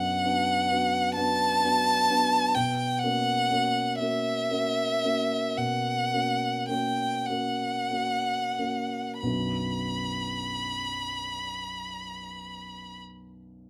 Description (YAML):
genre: classical, romantic duo for violin and grand piano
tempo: 28-45 BPM (dotted quarters)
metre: 12/8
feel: rubato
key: B minor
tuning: A4 = 440 Hz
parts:
  - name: clear violin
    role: melody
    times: 0.0-13.0 s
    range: E5 to B5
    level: -29 LUFS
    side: equal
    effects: none
  - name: warm concert grand piano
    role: accompaniment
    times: 0.0-13.7 s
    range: B1 to F#4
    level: -33 LUFS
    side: equal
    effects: none
room: light reverb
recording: none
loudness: -27 LUFS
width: mono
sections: 0.0-9.2 A section; 9.2-13.7 B section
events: slowing down 0.0-9.2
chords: 0.0 Bm; 2.5 F#7/B; 9.2 Bm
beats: 1.16 | 2.54 3.98 5.56 7.26 | 9.22 11.04 12.87